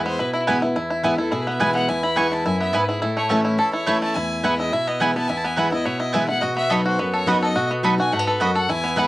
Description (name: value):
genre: bluegrass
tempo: 212 BPM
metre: 4/4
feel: straight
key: E major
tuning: A4 = 440 Hz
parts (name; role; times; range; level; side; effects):
- clear fiddle; melody; 0.0-9.1 s; E4 to C#6; -25 LUFS; left 1 dB; cassette tape
- picked steel-string acoustic guitar; accompaniment; 0.0-9.1 s; E2 to F#4; -24 LUFS; left 1 dB; cassette tape
- bluegrass banjo; arpeggios; 0.0-9.1 s; A3 to A4; -23 LUFS; equal; cassette tape
- mandolin; stabs; 0.5-9.1 s; A3 to B5; -21 LUFS; right 3 dB; cassette tape
room: wet booth ambience, RT60 0.3 s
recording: home recording on cassette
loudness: -18 LUFS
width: side -17 dB against mid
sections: 0.8-9.1 A section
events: fiddle solo 0.8-9.1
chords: 0.0 E; 3.0 A; 4.2 E; 6.4 B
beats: 0.19 0.48 | 0.76 1.04 1.33 1.61 | 1.89 2.18 2.46 2.74 | 3.03 3.31 3.59 3.88 | 4.16 4.44 4.73 5.01 | 5.29 5.58 5.86 6.14 | 6.43 6.71 7.00 7.28 | 7.56 7.84 8.13 8.41 | 8.69 8.98